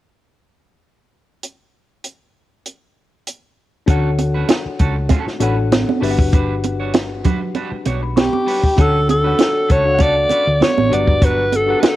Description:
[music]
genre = lush 1970s-style soul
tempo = 98 BPM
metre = 4/4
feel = swing 54% on 16ths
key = D major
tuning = A4 = 440 Hz
[part]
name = compact cocktail drum kit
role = drums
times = 1.4-12.0 s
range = hi-hat, kick drum, snare drum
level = -17 LUFS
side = equal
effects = none
[part]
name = mellow tine electric piano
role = accompaniment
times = 3.9-12.0 s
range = D4 to D6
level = -23 LUFS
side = left 6 dB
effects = medium stereo tremolo, cassette tape
[part]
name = electric guitar at the edge of break-up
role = riff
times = 3.9-11.9 s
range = F#3 to C#5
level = -28 LUFS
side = right 6 dB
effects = cassette tape
[part]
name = hollow-body short-scale fingered electric bass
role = bass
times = 3.9-11.7 s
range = G1 to D2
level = -20 LUFS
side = equal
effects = none
[part]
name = congas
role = percussion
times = 3.9-12.0 s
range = none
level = -21 LUFS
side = right 7 dB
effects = none
[part]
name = growling alto saxophone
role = melody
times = 8.2-12.0 s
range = G4 to D5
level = -16 LUFS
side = equal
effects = cassette tape
[sound]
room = studio reverb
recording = home recording on cassette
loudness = -14 LUFS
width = side -15 dB against mid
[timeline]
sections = 1.4-3.9 A section; 3.9-8.8 B section; 8.8-12.0 C section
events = none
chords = 1.4 N.C.; 3.9 Dmaj7; 6.0 Gmaj7; 8.8 Dmaj7; 10.9 Gmaj7

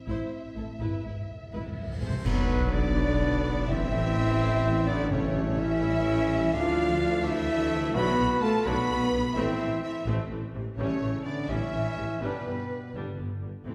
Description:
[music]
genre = cinematic, epic orchestral film score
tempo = 84 BPM (dotted quarters)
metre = 6/8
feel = straight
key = unclear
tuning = A4 = 438 Hz
[part]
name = warm symphonic violin section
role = melody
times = 0.0-13.7 s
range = A4 to B5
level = -41 LUFS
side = equal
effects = none
[part]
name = mellow French horn section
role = sustained chords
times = 0.0-13.7 s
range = B3 to B4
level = -34 LUFS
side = equal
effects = none
[part]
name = rich symphonic violin section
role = second line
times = 0.1-13.7 s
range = A3 to B5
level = -41 LUFS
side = equal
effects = none
[part]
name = rich studio viola section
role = accompaniment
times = 0.1-13.7 s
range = C3 to E4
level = -40 LUFS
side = equal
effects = none
[part]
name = warm symphonic cello section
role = bass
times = 0.1-13.7 s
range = G#2 to B3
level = -37 LUFS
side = equal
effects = none
[part]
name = warm symphonic double bass section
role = bass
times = 0.1-13.7 s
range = G1 to D2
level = -36 LUFS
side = equal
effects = none
[part]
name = timpani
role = percussion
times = 0.8-5.8, 13.7 s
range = E2 to A2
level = -40 LUFS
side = equal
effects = none
[part]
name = cymbal swell and sub drop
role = sound effects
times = 1.8-3.7 s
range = none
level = -38 LUFS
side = equal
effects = none
[part]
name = silver concert flute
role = second line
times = 2.0-12.9 s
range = B4 to B5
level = -38 LUFS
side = equal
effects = none
[part]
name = mellow trumpet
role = stabs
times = 2.0-12.9 s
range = F#3 to F#4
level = -38 LUFS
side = equal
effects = none
[part]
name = clash cymbals and concert bass drum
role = percussion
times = 2.2-3.2 s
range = none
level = -36 LUFS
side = equal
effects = none
[part]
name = mellow tuba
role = bass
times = 2.3-13.7 s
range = G1 to D2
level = -36 LUFS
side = equal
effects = none
[sound]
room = wet scoring stage reverb, RT60 1.6 s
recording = heard from further back in the room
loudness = -28 LUFS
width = mono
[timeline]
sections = 0.0-2.3 A section; 2.3-13.7 B section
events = timpani fill 0.8-2.3; cymbal swell 1.8-2.3; band accent 2.3-2.7; impact 2.3-3.7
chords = 0.0 Am; 0.8 E/G#; 2.3 Bm; 3.7 Am; 5.1 A7; 6.5 Dmadd9; 8.0 Bm; 9.4 Am; 10.8 A7; 12.2 G

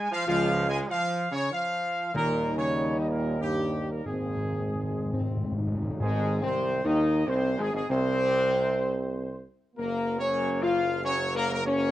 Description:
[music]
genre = classical, ceremonial fanfare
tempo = 96 BPM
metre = 3/4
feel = straight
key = Ab major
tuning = A4 = 439 Hz
[part]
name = warm trumpet section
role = melody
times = 0.0-11.9 s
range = G4 to Ab5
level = -30 LUFS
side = equal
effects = none
[part]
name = clear trombone section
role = sustained chords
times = 0.0-11.9 s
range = G2 to Bb3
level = -34 LUFS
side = right 2 dB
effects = none
[part]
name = warm French horn section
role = sustained chords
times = 0.3-11.9 s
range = G3 to F4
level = -30 LUFS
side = left 2 dB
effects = none
[part]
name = warm tuba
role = bass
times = 0.3-11.9 s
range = Gb1 to Eb2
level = -30 LUFS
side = right 2 dB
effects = none
[part]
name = timpani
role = percussion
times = 2.1-6.9 s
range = Ab2 to Eb3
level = -32 LUFS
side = left 1 dB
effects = none
[sound]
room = moderate large studio reverb, RT60 0.9 s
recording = worn, warbling old tape, cassette tape, warbly pitch drift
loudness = -25 LUFS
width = side -14 dB against mid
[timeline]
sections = 0.0-6.0 A section; 6.0-11.9 B section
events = timpani fill 4.1-6.0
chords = 0.0 Db; 2.1 Eb; 4.1 Abadd9; 6.0 Ab; 9.8 Gb

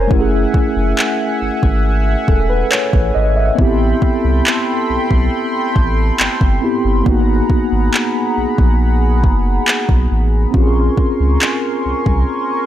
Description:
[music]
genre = contemporary R&B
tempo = 69 BPM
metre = 4/4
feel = straight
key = unclear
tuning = A4 = 440 Hz
[part]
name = mellow tine electric piano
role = accompaniment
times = 0.0-12.7 s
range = A3 to Fb5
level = -18 LUFS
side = left 1 dB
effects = medium stereo tremolo
[part]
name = chorused pulse-width pad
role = sustained chords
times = 0.0-12.7 s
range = Ab4 to Db6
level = -21 LUFS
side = right 1 dB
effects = none
[part]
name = warm sub bass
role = bass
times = 0.0-12.2 s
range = Fb1 to Db2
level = -16 LUFS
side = equal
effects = none
[part]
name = smooth R&B drum kit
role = drums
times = 0.1-12.3 s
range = handclaps, kick drum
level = -15 LUFS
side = equal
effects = overdrive
[sound]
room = digital ambience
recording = none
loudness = -12 LUFS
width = side -12 dB against mid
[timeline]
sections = 0.0-12.7 A section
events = none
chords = 0.1 Gbm9; 3.6 Am9; 7.1 Abm9; 10.5 Bbm9

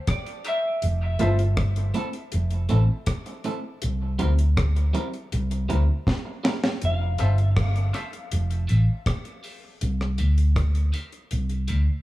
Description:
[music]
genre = dub reggae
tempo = 80 BPM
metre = 4/4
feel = straight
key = F major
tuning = A4 = 440 Hz
[part]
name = semi-hollow electric guitar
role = melody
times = 0.0-0.9, 6.8-7.6 s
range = D5 to F5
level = -31 LUFS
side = left 1 dB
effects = wide subtle chorus, dub echo
[part]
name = deep reggae drum kit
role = drums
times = 0.1-11.9 s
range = hi-hat, kick drum, rim click, snare drum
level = -27 LUFS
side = equal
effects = none
[part]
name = electric guitar at the edge of break-up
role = accompaniment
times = 0.3-11.8 s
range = G3 to Bb4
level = -32 LUFS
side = right 3 dB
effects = tremolo, high-pass filter, dub echo
[part]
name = warm upright piano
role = stabs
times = 0.4-1.4, 7.2-11.8 s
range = F4 to E5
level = -35 LUFS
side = left 3 dB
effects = high-pass filter, dub echo
[part]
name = vintage muted fingered electric bass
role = bass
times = 0.8-11.9 s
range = F1 to D2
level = -21 LUFS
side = equal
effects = none
[part]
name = mellow tonewheel organ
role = accompaniment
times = 7.0-11.9 s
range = none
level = barely audible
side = none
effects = none
[sound]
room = light reverb, small room reverb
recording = small room ambience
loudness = -22 LUFS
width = side -17 dB against mid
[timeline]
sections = 0.0-12.0 A section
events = break 0.0-6.8; filter sweep 3.8-12.0; drum fill 6.1-6.8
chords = 0.0 C7; 0.8 Fmaj7; 3.8 C7; 6.8 Fmaj7; 9.8 C7

